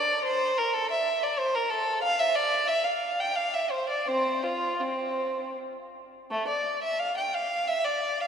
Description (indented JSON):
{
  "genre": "classical, baroque-style suite movement for unaccompanied violin",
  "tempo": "78-95 BPM",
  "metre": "3/4",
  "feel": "rubato",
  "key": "F major",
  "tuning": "A4 = 440 Hz",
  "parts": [
    { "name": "warm violin", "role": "solo", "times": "0.0-8.3 s", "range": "A3 to G5", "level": "-25 LUFS", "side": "equal", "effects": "none" }
  ],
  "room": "wet cathedral reverb, RT60 4.3 s",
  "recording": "recorded in a church or concert hall, lossy compression artefacts",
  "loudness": "-25 LUFS",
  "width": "side -7 dB against mid",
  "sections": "0.0-6.3 A section; 6.3-8.3 B section",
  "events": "none",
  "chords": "none"
}